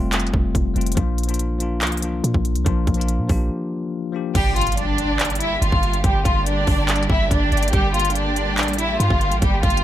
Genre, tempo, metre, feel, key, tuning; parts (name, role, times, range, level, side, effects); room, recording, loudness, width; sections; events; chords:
hip hop, trap; 142 BPM; 4/4; half-time; G dorian; A4 = 440 Hz
bell-like tine electric piano; accompaniment; 0.0-4.4 s; F3 to G4; -24 LUFS; moving between left 9 dB and left 2 dB; auto-pan
warm 808-style bass; bass; 0.0-9.8 s; F1 to Bb2; -22 LUFS; right 1 dB
trap drum kit; drums; 0.1-9.8 s; crash cymbal, handclaps, hi-hat, kick drum; -22 LUFS; equal
dark symphonic string section; sustained chords; 4.3-9.8 s; D3 to G4; -28 LUFS; right 2 dB
impact; sound effects; 4.4-6.0 s; -30 LUFS; right 1 dB
warm studio violin section; melody; 4.4-9.8 s; G3 to F5; -21 LUFS; equal; dub echo
light reverb, digital ambience; echo-heavy mix; -18 LUFS; side -12 dB against mid
0.0-4.3 A section; 4.3-9.8 B section
break 3.5-4.3; impact 4.3-6.0
0.0 Fadd9; 1.0 Bb; 4.3 Gm